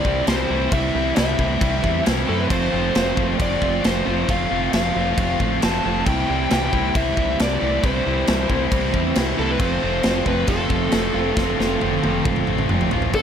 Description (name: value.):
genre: classic rock.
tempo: 135 BPM.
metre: 4/4.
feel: straight.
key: unclear.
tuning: A4 = 439 Hz.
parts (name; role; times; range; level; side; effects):
overdriven slide guitar; melody; 0.0-12.7 s; A4 to A5; -25 LUFS; left 1 dB; none.
distorted electric guitar; riff; 0.0-13.2 s; G2 to F4; -28 LUFS; equal; overdrive.
overdriven electric guitar; riff; 0.0-13.2 s; F2 to F4; -26 LUFS; right 11 dB; none.
tight distorted guitar; riff; 0.0-13.2 s; G2 to F4; -26 LUFS; left 12 dB; distortion.
big rock drum kit; drums; 0.0-13.2 s; crash cymbal, hi-hat, kick drum, snare drum, toms; -23 LUFS; equal; none.
growling fingered electric bass; bass; 0.1-13.2 s; F1 to F#2; -25 LUFS; equal; overdrive.
dark smooth lead guitar; second line; 13.1-13.2 s; A4; -18 LUFS; left 2 dB; overdrive.
room: light reverb, small room ambience.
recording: none.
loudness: -18 LUFS.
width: side -8 dB against mid.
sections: 0.0-13.1 A section.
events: drum fill 11.4-13.1.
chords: 0.0 C; 2.5 F; 6.1 C; 9.6 F.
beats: 0.28 | 0.73 1.17 1.62 2.06 | 2.51 2.95 3.40 3.84 | 4.29 4.73 5.17 5.62 | 6.06 6.51 6.95 7.39 | 7.84 8.28 8.72 9.17 | 9.61 10.05 10.49 10.93 | 11.37 11.81 12.26 12.70 | 13.14.